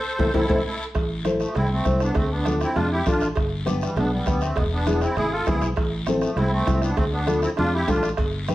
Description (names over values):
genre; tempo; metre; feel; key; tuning
latin, cumbia; 199 BPM; 4/4; straight; A minor; A4 = 440 Hz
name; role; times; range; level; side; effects
musette accordion; melody; 0.0-8.1 s; E3 to C5; -26 LUFS; equal; none
nylon-string guitar; accompaniment; 0.2-8.5 s; B3 to C5; -26 LUFS; left 3 dB; none
fingered electric bass; bass; 0.2-8.5 s; E1 to F2; -26 LUFS; equal; none
bombo; percussion; 0.2-8.5 s; none; -27 LUFS; right 1 dB; none
congas; percussion; 0.2-8.5 s; none; -31 LUFS; right 2 dB; none
guiro; percussion; 0.2-8.5 s; none; -38 LUFS; left 4 dB; none
timbales and cowbell; percussion; 0.2-8.3 s; none; -32 LUFS; right 3 dB; none
room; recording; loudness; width
wet studio reverb, RT60 0.6 s; heard from further back in the room; -20 LUFS; side -15 dB against mid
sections
0.9-8.5 A section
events
band accent 0.0-0.9; drum fill 0.2-0.9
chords
0.0 Am; 2.2 Dm; 3.4 G; 4.6 E7; 5.8 Am; 7.0 Dm